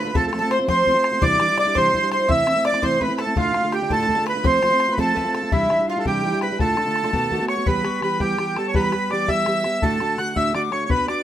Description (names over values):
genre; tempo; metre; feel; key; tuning
celtic folk, Celtic jig; 112 BPM (dotted quarters); 6/8; straight; D dorian, E dorian from 7.7 s; A4 = 442 Hz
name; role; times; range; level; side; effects
accordion; melody; 0.0-11.2 s; E4 to F#5; -21 LUFS; right 2 dB; none
Irish bouzouki; second line; 0.0-7.5 s; E4 to E5; -26 LUFS; equal; none
breathy mid whistle; second line; 0.0-11.2 s; E5 to F#6; -28 LUFS; left 7 dB; none
fingerpicked plugged-in acoustic archtop guitar; accompaniment; 0.0-11.2 s; D2 to B4; -24 LUFS; right 2 dB; none
bodhran; percussion; 0.1-11.2 s; none; -26 LUFS; left 3 dB; none
room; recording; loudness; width
wet small room reverb, RT60 0.6 s; none; -18 LUFS; side -11 dB against mid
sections
0.0-7.7 A section; 7.7-11.2 B section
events
none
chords
0.1 F; 1.2 Cadd9; 2.3 Am/C; 3.4 Dm; 4.4 F; 5.5 Cadd9; 6.6 Dm; 7.1 B7; 7.7 Em; 9.8 D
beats
| 0.15 0.68 | 1.22 1.76 | 2.29 2.83 | 3.37 3.91 | 4.45 4.98 | 5.52 6.06 | 6.59 7.13 | 7.67 8.21 | 8.75 9.29 | 9.82 10.36 | 10.90